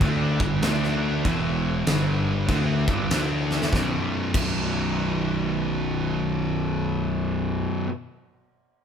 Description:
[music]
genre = blues rock power trio and southern rock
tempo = 97 BPM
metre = 4/4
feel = swing 63% on 8ths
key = unclear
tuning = A4 = 440 Hz
[part]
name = sludgy distorted guitar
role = riff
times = 0.0-7.9 s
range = B1 to D4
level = -24 LUFS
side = equal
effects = overdrive
[part]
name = fuzz fingered electric bass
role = bass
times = 0.0-7.7 s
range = B0 to D2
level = -28 LUFS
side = equal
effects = overdrive
[part]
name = huge arena drum kit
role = drums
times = 0.0-4.6 s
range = crash cymbal, kick drum, snare drum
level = -27 LUFS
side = equal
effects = none
[sound]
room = light reverb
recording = band playing live in one room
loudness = -22 LUFS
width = side -7 dB against mid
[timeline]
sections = 0.0-3.7 A section; 3.7-6.2 B section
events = drum fill 3.4-3.7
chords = 0.0 Gsus2; 0.6 D5; 1.3 E5; 1.9 G5; 2.5 Gsus2; 3.1 D5; 3.7 B5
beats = 0.02 0.64 | 1.26 1.87 2.49 3.11 | 3.73 4.34 4.96 5.58

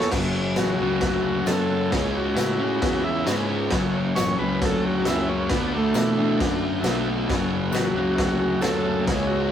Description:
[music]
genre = garage rock duo or trio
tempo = 134 BPM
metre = 4/4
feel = straight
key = F# minor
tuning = A4 = 441 Hz
[part]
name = combo organ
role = melody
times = 0.0-9.5 s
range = E3 to C#5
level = -25 LUFS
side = right 1 dB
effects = none
[part]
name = fuzz guitar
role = riff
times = 0.0-9.5 s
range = F#2 to E4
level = -24 LUFS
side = left 1 dB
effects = distortion
[part]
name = fuzz fingered electric bass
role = bass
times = 0.0-9.5 s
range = F#1 to B2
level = -30 LUFS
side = equal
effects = overdrive
[part]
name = raw garage drum kit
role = drums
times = 0.0-9.2 s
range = crash cymbal, kick drum, snare drum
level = -27 LUFS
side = equal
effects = none
[part]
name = overdriven combo organ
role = sustained chords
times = 0.1-9.5 s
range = E4 to E5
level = -35 LUFS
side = equal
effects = none
[part]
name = tambourine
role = percussion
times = 0.6-8.7 s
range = none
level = -41 LUFS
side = left 4 dB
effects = none
[sound]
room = light reverb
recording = rough rehearsal-room recording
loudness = -20 LUFS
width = side -9 dB against mid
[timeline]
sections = 0.1-9.5 A section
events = none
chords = 0.1 F#m; 1.9 C#m; 3.7 F#m; 5.5 D; 7.3 F#m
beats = | 0.13 0.58 1.03 1.48 | 1.93 2.38 2.82 3.27 | 3.72 4.17 4.61 5.06 | 5.51 5.95 6.40 6.84 | 7.29 7.74 8.18 8.63 | 9.07 9.52

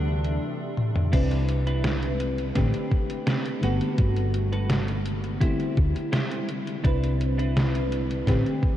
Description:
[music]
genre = vaporwave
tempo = 84 BPM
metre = 4/4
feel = straight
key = unclear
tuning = A4 = 443 Hz
[part]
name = FM electric piano with soft pad layer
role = accompaniment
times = 0.0-8.8 s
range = C3 to B4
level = -29 LUFS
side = left 1 dB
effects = wide subtle chorus, ping-pong delay
[part]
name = soft string machine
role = sustained chords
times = 0.0-1.1 s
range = G4 to C6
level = -43 LUFS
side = equal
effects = none
[part]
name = hollow-body short-scale fingered electric bass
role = bass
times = 0.0-8.4 s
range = G1 to D2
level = -25 LUFS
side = equal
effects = none
[part]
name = detuned 8-bit digital drum machine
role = drums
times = 0.2-8.6 s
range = crash cymbal, hi-hat, snare drum, toms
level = -30 LUFS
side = equal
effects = overdrive
[part]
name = clean electric guitar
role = riff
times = 1.1-8.6 s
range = C4 to C5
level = -35 LUFS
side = right 3 dB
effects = analog chorus, ping-pong delay
[part]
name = electronic kick drum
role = drums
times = 1.1-8.8 s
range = none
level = -24 LUFS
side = equal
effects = overdrive
[sound]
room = moderate huge ambient reverb, RT60 7.2 s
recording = dreamy mix soaked in reverb, cassette tape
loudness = -22 LUFS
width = side -12 dB against mid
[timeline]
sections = 0.0-1.1 A section; 1.1-8.8 B section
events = drum fill 0.8-1.1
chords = 0.0 D9sus4; 1.1 Cmaj9; 2.6 Am11; 3.6 Gmaj9; 5.4 D9sus4; 6.8 Cmaj9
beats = 0.41 | 1.13 1.84 2.56 3.27 | 3.99 4.70 5.42 6.13 | 6.84 7.56 8.27

